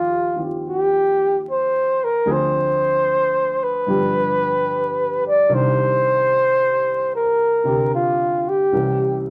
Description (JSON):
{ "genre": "jazz ballad", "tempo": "74 BPM", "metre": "4/4", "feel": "swing 66% on 8ths", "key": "C minor from 5.5 s", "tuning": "A4 = 440 Hz", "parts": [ { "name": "breathy flugelhorn", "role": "melody", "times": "0.0-9.3 s", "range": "F4 to D5", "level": "-20 LUFS", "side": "equal", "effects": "none" }, { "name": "warm baby grand piano", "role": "accompaniment", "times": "0.0-9.3 s", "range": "C2 to D5", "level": "-27 LUFS", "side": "equal", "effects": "none" } ], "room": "moderate club reverb, RT60 0.7 s", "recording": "vinyl crackle", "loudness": "-19 LUFS", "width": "mono", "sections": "0.0-5.5 A section; 5.5-9.3 B section", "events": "none", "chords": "0.0 Ebmaj9; 2.3 Dm7b5; 3.9 G7; 5.5 Cm9; 8.7 C7b9", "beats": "0.64 1.45 | 2.25 3.06 3.87 4.68 | 5.49 6.30 7.10 7.91 | 8.71" }